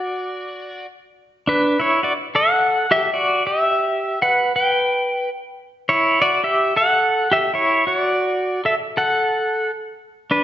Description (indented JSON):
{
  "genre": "hawaiian",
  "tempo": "108 BPM",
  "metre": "4/4",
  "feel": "swing 59% on 8ths",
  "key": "D major",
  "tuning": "A4 = 438 Hz",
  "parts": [
    { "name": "pedal steel guitar", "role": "solo", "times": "0.0-10.4 s", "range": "D4 to G5", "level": "-16 LUFS", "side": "equal", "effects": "none" }
  ],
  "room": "moderate recital hall reverb, RT60 1.5 s",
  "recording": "nothing above 7.8 kHz",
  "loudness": "-16 LUFS",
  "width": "side -12 dB against mid",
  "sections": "0.0-1.4 A section; 1.4-10.4 B section",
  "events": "none",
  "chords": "0.0 N.C.; 1.4 D; 3.7 Em; 5.9 A5; 8.1 D"
}